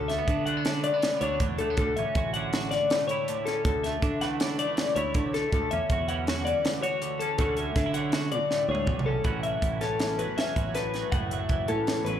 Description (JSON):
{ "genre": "math rock and midwest emo", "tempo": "161 BPM", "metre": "5/4", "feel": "straight", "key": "unclear", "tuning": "A4 = 440 Hz", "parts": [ { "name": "twelve-string electric guitar", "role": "accompaniment", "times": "0.0-12.2 s", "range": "D2 to G#4", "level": "-33 LUFS", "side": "right 10 dB", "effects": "analog chorus, slapback echo" }, { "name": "twelve-string electric guitar", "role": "arpeggios", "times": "0.0-12.2 s", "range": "A4 to F#5", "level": "-28 LUFS", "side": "left 4 dB", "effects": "analog delay, slapback echo" }, { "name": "picked electric bass", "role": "bass", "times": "0.0-12.2 s", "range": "F#1 to D3", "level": "-32 LUFS", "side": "right 1 dB", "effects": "none" }, { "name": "crisp fusion drum kit", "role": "drums", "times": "0.1-12.1 s", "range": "hi-hat, kick drum, snare drum, toms", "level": "-30 LUFS", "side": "right 1 dB", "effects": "none" } ], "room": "light reverb, small room ambience", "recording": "live gig heard through the venue's PA, club ambience", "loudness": "-25 LUFS", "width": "side -10 dB against mid", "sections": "0.0-9.3 A section; 9.3-12.2 B section", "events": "drum fill 8.5-9.3", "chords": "0.0 Bm7/D; 1.8 Dmaj9; 3.7 A6/D; 7.4 Dmaj7; 9.3 A69" }